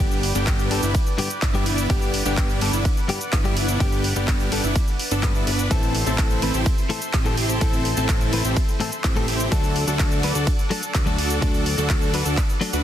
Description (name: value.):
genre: EDM, festival progressive house.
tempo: 126 BPM.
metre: 4/4.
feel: straight.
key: G major.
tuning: A4 = 438 Hz.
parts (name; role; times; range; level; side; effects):
direct-recorded clean electric guitar; accompaniment; 0.0-12.7 s; G2 to B4; -28 LUFS; left 4 dB; sidechain pumping, ping-pong delay.
lush unison pad; sustained chords; 0.0-12.8 s; A4 to D6; -32 LUFS; equal; chorus, sidechain pumping.
dense compressed supersaw; riff; 0.0-12.8 s; B3 to B4; -26 LUFS; equal; sidechain pumping, ping-pong delay.
fat analog bass; bass; 0.0-12.8 s; G1 to D2; -26 LUFS; equal; sidechain pumping.
big-room dance drum kit; drums; 0.1-12.8 s; handclaps, hi-hat, ride cymbal, rim click, shaker; -28 LUFS; right 1 dB; overdrive.
electronic kick drum; drums; 0.5-12.5 s; none; -22 LUFS; equal; overdrive.
room: digital ambience.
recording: dense, heavily limited modern master.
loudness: -19 LUFS.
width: side -11 dB against mid.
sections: 0.0-12.8 A section.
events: none.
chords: 0.0 G; 5.7 Am; 9.5 D.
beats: 0.47 0.95 1.42 | 1.90 2.38 2.85 3.33 | 3.80 4.28 4.76 5.23 | 5.71 6.18 6.66 7.14 | 7.61 8.09 8.57 9.04 | 9.52 9.99 10.47 10.95 | 11.42 11.90 12.38.